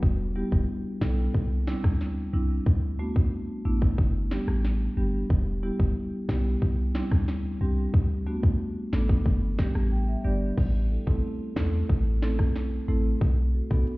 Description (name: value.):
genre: dancehall.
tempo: 91 BPM.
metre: 4/4.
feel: straight.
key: unclear.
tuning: A4 = 438 Hz.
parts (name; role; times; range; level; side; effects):
clean 808-style bass; bass; 0.0-13.8 s; E1 to E2; -26 LUFS; equal; none.
island pop drum kit; drums; 0.0-14.0 s; crash cymbal, hi-hat, kick drum, rim click, snare drum; -25 LUFS; equal; none.
marimba with medium mallets; accompaniment; 0.4-13.8 s; G3 to G5; -30 LUFS; equal; none.
room: digital ambience.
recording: heard muffled through a wall, stone room reverb, EQ, nothing above 10.4 kHz.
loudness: -24 LUFS.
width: side -21 dB against mid.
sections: 0.0-10.6 A section; 10.6-14.0 B section.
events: marimba fill 9.6-10.6.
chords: 0.0 Em; 1.3 Cadd9; 2.7 D5; 4.0 G; 5.3 Em; 6.6 Csus2; 7.9 D5; 9.3 G; 10.6 Am; 13.2 Bm7.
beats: | 0.03 0.69 1.34 2.00 | 2.66 3.32 3.98 4.64 | 5.30 5.96 6.62 7.28 | 7.94 8.60 9.26 9.92 | 10.58 11.23 11.89 12.55 | 13.21 13.87.